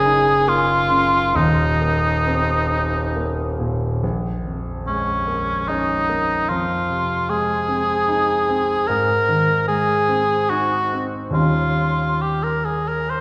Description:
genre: classical, impressionist duo for cor anglais and grand piano.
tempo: 66-77 BPM.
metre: 3/4.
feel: rubato.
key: Bb minor.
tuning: A4 = 440 Hz.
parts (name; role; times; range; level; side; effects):
clear cor anglais; melody; 0.0-13.2 s; Db4 to C5; -21 LUFS; equal; none.
clear concert grand piano; accompaniment; 0.0-13.2 s; Eb1 to F4; -24 LUFS; equal; none.
room: wet recital hall reverb, RT60 1.5 s.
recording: recorded in a church or concert hall.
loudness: -20 LUFS.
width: mono.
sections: 0.0-4.0 A section; 4.0-13.2 B section.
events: none.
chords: 0.0 Gb69; 1.4 Eb5; 4.0 Bbm7; 6.5 Fm7; 8.9 Abadd9; 11.4 Eb9.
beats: 0.49 | 1.37 2.27 3.16 | 4.03 4.87 5.67 | 6.49 7.29 8.08 | 8.88 9.68 10.50 | 11.35 12.23 13.10.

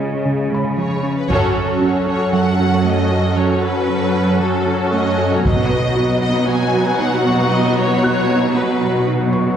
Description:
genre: cinematic, hybrid orchestral and electronic film score.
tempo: 116 BPM.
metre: 4/4.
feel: straight.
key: F# dorian.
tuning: A4 = 440 Hz.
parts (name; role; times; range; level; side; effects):
hollow soft pad; sustained chords; 0.0-9.6 s; F#3 to B4; -21 LUFS; right 2 dB; ensemble chorus.
mellow French horn section; sustained chords; 0.0-1.0 s; G#3; -25 LUFS; left 2 dB; none.
thumb-piano-like synth pluck; arpeggios; 0.0-9.5 s; C#3 to B4; -24 LUFS; right 3 dB; chorus, tape echo.
rich symphonic cello section; bass; 0.0-9.5 s; F#2 to C#3; -20 LUFS; equal; none.
felt-muted upright piano; texture; 0.5-9.6 s; F#5 to F#6; -29 LUFS; left 1 dB; tape echo.
clear symphonic violin section; melody; 0.8-9.1 s; A4 to G#5; -23 LUFS; left 3 dB; none.
warm symphonic violin section; second line; 1.3-9.5 s; D#4 to A4; -24 LUFS; left 2 dB; none.
rich symphonic viola section; accompaniment; 1.3-9.5 s; F#3 to C#4; -22 LUFS; right 1 dB; none.
taiko ensemble; drums; 1.3-2.3, 5.4-6.4 s; none; -22 LUFS; equal; none.
room: wet scoring stage reverb, RT60 1.9 s.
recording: heard from further back in the room.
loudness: -14 LUFS.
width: side -8 dB against mid.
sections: 0.0-1.3 A section; 1.3-9.6 A section.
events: band accent 1.3-1.8.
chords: 0.0 C#; 1.3 F#m; 5.4 B.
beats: 0.27 0.79 | 1.30 1.82 2.34 2.86 | 3.37 3.89 4.41 4.92 | 5.44 5.96 6.48 6.99 | 7.51 8.03 8.55 9.06.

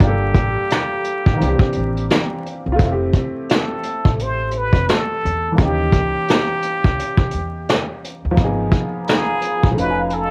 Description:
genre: lo-fi hip hop.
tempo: 86 BPM.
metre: 4/4.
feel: swing 59% on 16ths.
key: unclear.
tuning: A4 = 441 Hz.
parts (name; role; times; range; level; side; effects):
trumpet with plunger mute; melody; 0.0-10.3 s; G4 to C5; -25 LUFS; equal; low-pass filter.
warm upright piano; accompaniment; 0.0-10.3 s; D#3 to G#5; -26 LUFS; equal; cassette tape, low-pass filter.
upright bass; bass; 0.0-10.3 s; F1 to E2; -26 LUFS; equal; transformer saturation.
vintage brush drum kit; drums; 0.0-10.3 s; hi-hat, kick drum, snare drum; -20 LUFS; equal; cassette tape.
granular cloud pad; sustained chords; 8.9-10.3 s; A3 to C#6; -29 LUFS; equal; built-in reverb, low-pass filter.
room: moderate booth ambience, RT60 0.3 s.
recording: home recording on cassette, vinyl crackle.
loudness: -19 LUFS.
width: mono.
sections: 0.0-10.3 A section.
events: none.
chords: 0.0 Gm9; 1.4 C9; 2.8 Fmaj9; 5.6 D#7b9; 8.4 G#m69; 9.8 F7alt.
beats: | 0.00 0.70 1.40 2.09 | 2.79 3.49 4.19 4.88 | 5.58 6.28 6.98 7.67 | 8.37 9.07 9.77.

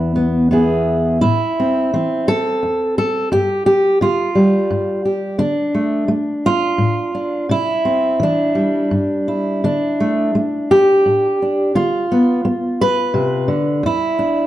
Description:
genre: folk, solo fingerstyle acoustic guitar.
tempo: 86 BPM.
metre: 3/4.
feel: rubato.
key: A minor.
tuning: A4 = 440 Hz.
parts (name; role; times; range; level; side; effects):
fingerpicked steel-string acoustic guitar; solo; 0.0-14.5 s; E2 to B4; -14 LUFS; equal; none.
room: moderate large studio reverb, RT60 0.9 s.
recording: dark, warm production.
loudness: -14 LUFS.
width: side -13 dB against mid.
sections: 0.0-1.2 A section; 1.2-14.5 B section.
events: none.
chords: 0.0 E; 1.2 Am; 3.3 G5; 5.4 Dm; 7.5 C; 9.6 Dsus2; 11.8 Bdim/D; 13.8 Dsus2/E.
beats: 0.50 | 1.22 1.93 2.63 | 3.32 4.01 4.70 | 5.40 6.10 6.79 | 7.49 8.20 8.91 | 9.63 10.34 11.05 | 11.75 12.45 13.14 | 13.83.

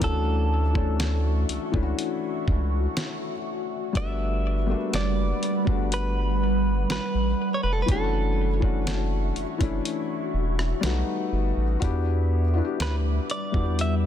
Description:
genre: contemporary R&B.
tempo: 61 BPM.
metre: 4/4.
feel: straight.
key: D major.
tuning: A4 = 438 Hz.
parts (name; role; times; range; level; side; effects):
direct-recorded clean electric guitar; melody; 0.0-13.9 s; A4 to E5; -32 LUFS; right 2 dB; ping-pong delay.
felt-muted upright piano; accompaniment; 0.0-14.1 s; E3 to A4; -30 LUFS; left 6 dB; none.
ethereal airy pad; sustained chords; 0.0-14.1 s; G3 to D6; -31 LUFS; right 2 dB; ensemble chorus, built-in reverb, sidechain pumping.
round analog bass; bass; 0.0-14.1 s; E1 to E2; -25 LUFS; equal; none.
dusty soul sampler-style drum kit; drums; 0.0-14.0 s; hi-hat, kick drum, rim click, snare drum; -28 LUFS; equal; none.
room: little or no reverb.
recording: dense, heavily limited modern master.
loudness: -23 LUFS.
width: side -10 dB against mid.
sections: 0.0-14.1 A section.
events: none.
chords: 0.0 Dmaj9; 3.9 Gmaj7; 7.9 Dmaj9/F#; 10.8 B7b13; 11.8 Em7.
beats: | 0.01 1.00 1.98 2.97 | 3.95 4.93 5.92 6.90 | 7.88 8.87 9.85 10.83 | 11.82 12.80 13.79.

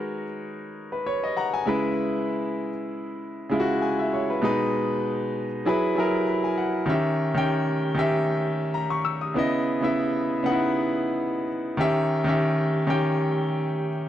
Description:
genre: soul.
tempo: 98 BPM.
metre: 4/4.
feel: swing 54% on 16ths.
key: unclear.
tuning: A4 = 440 Hz.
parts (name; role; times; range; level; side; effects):
bright grand piano; solo; 0.0-14.1 s; B2 to E6; -23 LUFS; equal; none.
room: studio reverb.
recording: dry, close 1970s-style studio recording.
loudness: -22 LUFS.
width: side -11 dB against mid.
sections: 0.0-6.9 A section; 6.9-14.1 B section.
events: grand piano fill 1.1-2.0, 6.0-6.9.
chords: 0.0 G#m11; 1.7 C#m7; 4.4 B6; 5.7 F#9sus4; 6.9 D#7b9; 9.4 C#m9; 11.8 D#7b9.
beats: 0.14 0.76 1.37 | 1.99 2.60 3.22 3.83 | 4.45 5.06 5.67 6.29 | 6.90 7.52 8.13 8.74 | 9.36 9.97 10.59 11.20 | 11.81 12.42 13.04 13.65.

